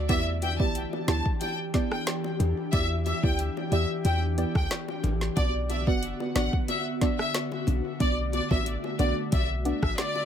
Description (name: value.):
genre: dancehall.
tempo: 91 BPM.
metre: 4/4.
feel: straight.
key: E minor.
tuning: A4 = 440 Hz.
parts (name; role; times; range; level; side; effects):
airy breathy pad; sustained chords; 0.0-10.2 s; D3 to G4; -34 LUFS; left 2 dB; chorus, sidechain pumping.
clean 808-style bass; bass; 0.0-9.9 s; F#1 to E2; -28 LUFS; equal; none.
bright studio violin section; melody; 0.1-10.2 s; D5 to A5; -32 LUFS; left 2 dB; tape echo.
soft round pluck; accompaniment; 0.1-9.9 s; B3 to D5; -32 LUFS; right 3 dB; chorus, tape echo.
afro-pop drum kit; drums; 0.1-10.1 s; hi-hat, kick drum, rim click, snare drum; -28 LUFS; equal; none.
bongos; percussion; 0.1-10.2 s; none; -40 LUFS; left 5 dB; tape echo.
room: little or no reverb.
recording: echo-heavy mix.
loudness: -25 LUFS.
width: side -9 dB against mid.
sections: 0.0-10.2 A section.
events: none.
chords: 0.1 Em7; 5.4 Bm.